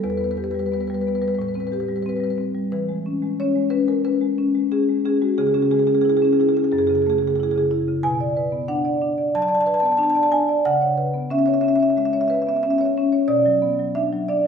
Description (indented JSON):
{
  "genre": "classical, contemporary piece for solo marimba",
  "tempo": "90 BPM",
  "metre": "4/4",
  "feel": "rubato",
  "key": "unclear",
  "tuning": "A4 = 440 Hz",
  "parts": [
    { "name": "marimba with medium mallets", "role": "solo", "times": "0.0-14.5 s", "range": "E2 to A5", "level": "-18 LUFS", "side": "equal", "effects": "none" }
  ],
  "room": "wet recital hall reverb, RT60 1.5 s",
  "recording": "recorded in a church or concert hall",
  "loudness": "-18 LUFS",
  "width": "side -6 dB against mid",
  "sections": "0.0-14.5 A section",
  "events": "none",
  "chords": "0.0 Em; 1.4 Am7; 2.7 E6; 5.4 C#m; 6.7 F#m7; 8.0 Bm7; 10.7 C#m7; 13.3 Bm"
}